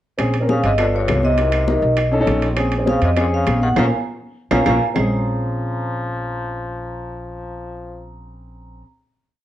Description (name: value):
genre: Afro-Cuban jazz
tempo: 201 BPM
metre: 4/4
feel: straight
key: Bb minor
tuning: A4 = 440 Hz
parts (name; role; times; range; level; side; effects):
- dark grand piano; accompaniment; 0.2-8.8 s; Bb3 to Bb4; -22 LUFS; left 1 dB; none
- upright bass; bass; 0.2-8.8 s; G1 to F2; -22 LUFS; equal; none
- bongos; percussion; 0.2-5.0 s; none; -28 LUFS; left 4 dB; none
- claves; percussion; 0.2-5.0 s; none; -32 LUFS; right 3 dB; none
- congas; percussion; 0.2-5.0 s; none; -26 LUFS; left 1 dB; none
- timbales; percussion; 0.2-5.0 s; none; -28 LUFS; right 5 dB; none
- vibraphone with medium hard mallets; melody; 0.5-8.8 s; Db5 to Bb5; -23 LUFS; right 1 dB; none
- trombone with straight mute; second line; 0.5-8.1 s; G2 to F3; -28 LUFS; left 3 dB; none
room: moderate large studio reverb, RT60 0.9 s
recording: worn, warbling old tape, cassette tape, warbly pitch drift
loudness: -16 LUFS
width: side -13 dB against mid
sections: 0.2-5.0 A section; 5.0-7.4 final chord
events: band accent 3.8-5.0; drum fill 4.5-5.0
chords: 0.2 Bbm7; 0.8 G7; 1.4 Cm7b5; 2.0 B9; 2.6 Bbm7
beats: | 0.19 0.48 0.78 1.08 | 1.38 1.68 1.98 2.28 | 2.58 2.87 3.17 3.47 | 3.77 4.07 4.36 4.66 | 4.96 5.26 5.56 5.86 | 6.16 6.46 6.75 7.05